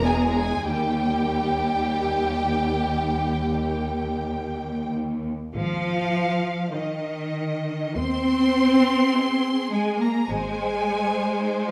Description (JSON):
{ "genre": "classical, slow romantic movement for string orchestra", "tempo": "47-54 BPM", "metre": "4/4", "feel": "rubato", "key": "Ab major", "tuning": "A4 = 441 Hz", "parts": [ { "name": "warm studio violin section", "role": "melody", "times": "0.0-11.7 s", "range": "Ab4 to Bb5", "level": "-32 LUFS", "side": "equal", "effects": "none" }, { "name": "warm studio violin section", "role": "second line", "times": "0.0-11.7 s", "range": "G4 to C6", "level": "-32 LUFS", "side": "equal", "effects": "none" }, { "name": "rich studio viola section", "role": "accompaniment", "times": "0.0-11.7 s", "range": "G3 to C5", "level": "-36 LUFS", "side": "equal", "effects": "none" }, { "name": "clear studio cello section", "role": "bass", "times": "0.0-11.7 s", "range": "Eb2 to C4", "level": "-26 LUFS", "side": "equal", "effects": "none" }, { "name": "warm studio double bass section", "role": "bass", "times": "0.0-11.2 s", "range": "E1 to Eb2", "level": "-33 LUFS", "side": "equal", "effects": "none" } ], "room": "moderate scoring stage reverb, RT60 1.6 s", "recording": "none", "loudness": "-24 LUFS", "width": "mono", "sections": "0.0-5.5 A section; 5.5-11.7 B section", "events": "none", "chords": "0.0 E5; 0.7 Eb; 5.5 Ab", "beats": "| 0.65 1.90 3.13 4.34 | 5.54 6.72 7.96 9.14 | 10.28 11.41" }